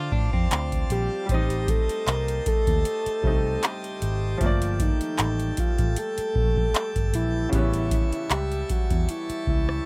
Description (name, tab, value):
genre	contemporary R&B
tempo	77 BPM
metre	4/4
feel	swing 54% on 16ths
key	unclear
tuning	A4 = 439 Hz
part	clear baby grand piano	accompaniment	0.0-9.9 s	C#3 to D5	-37 LUFS	equal	none
part	pipe organ, plenum	sustained chords	0.0-9.9 s	G3 to A5	-38 LUFS	equal	none
part	direct-recorded clean electric guitar	arpeggios	0.0-1.3 s	C4 to F4	-36 LUFS	equal	tape echo
part	vintage muted fingered electric bass	bass	0.0-9.8 s	G1 to A2	-29 LUFS	equal	none
part	booming analog drum machine	drums	0.1-9.9 s	handclaps, hi-hat, kick drum, rim click	-27 LUFS	equal	none
part	soft octave-layered synth lead	melody	0.9-9.9 s	Eb4 to Bb4	-31 LUFS	equal	chorus
room	light reverb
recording	none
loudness	-25 LUFS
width	mono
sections	0.0-9.9 A section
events	none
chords	0.0 Dm7; 1.3 Am7b5; 4.4 Gm9; 7.5 A7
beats	0.51 | 1.29 2.07 2.85 3.63 | 4.41 5.19 5.97 6.75 | 7.53 8.31 9.09